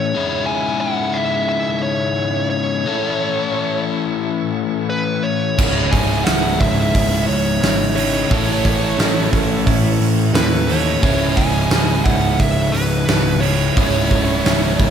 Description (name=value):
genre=classic rock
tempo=88 BPM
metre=4/4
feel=straight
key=C# minor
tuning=A4 = 441 Hz
part: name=dark smooth lead guitar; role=melody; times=0.0-14.9 s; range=B4 to G#5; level=-22 LUFS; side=right 1 dB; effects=overdrive, slapback echo
part: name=bright tonewheel organ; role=sustained chords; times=0.0-14.9 s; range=G#3 to C#5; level=-31 LUFS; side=right 2 dB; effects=slow rotary speaker, overdrive
part: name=biting overdriven guitar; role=riff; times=0.0-14.9 s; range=C#2 to A4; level=-21 LUFS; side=left 7 dB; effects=none
part: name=warm upright piano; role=accompaniment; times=5.6-14.9 s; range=C#4 to E5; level=-29 LUFS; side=right 5 dB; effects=none
part: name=crunchy overdriven guitar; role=riff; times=5.6-14.9 s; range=C#2 to A4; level=-22 LUFS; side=right 10 dB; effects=none
part: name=fuzz picked electric bass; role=bass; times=5.6-14.9 s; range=C#1 to D#2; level=-22 LUFS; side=right 1 dB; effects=overdrive
part: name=big rock drum kit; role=drums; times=5.6-14.9 s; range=crash cymbal, hi-hat, kick drum, snare drum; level=-19 LUFS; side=right 1 dB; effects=none
room=moderate scoring stage reverb, RT60 1.9 s, small room ambience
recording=big arena sound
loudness=-15 LUFS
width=side -8 dB against mid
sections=0.0-14.9 A section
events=none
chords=0.1 C#m; 2.9 A; 5.6 C#m; 8.3 A; 11.0 C#m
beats=| 0.14 0.82 1.50 2.18 | 2.86 3.54 4.22 4.91 | 5.59 6.27 6.95 7.63 | 8.31 8.99 9.68 10.36 | 11.04 11.72 12.40 13.09 | 13.77 14.45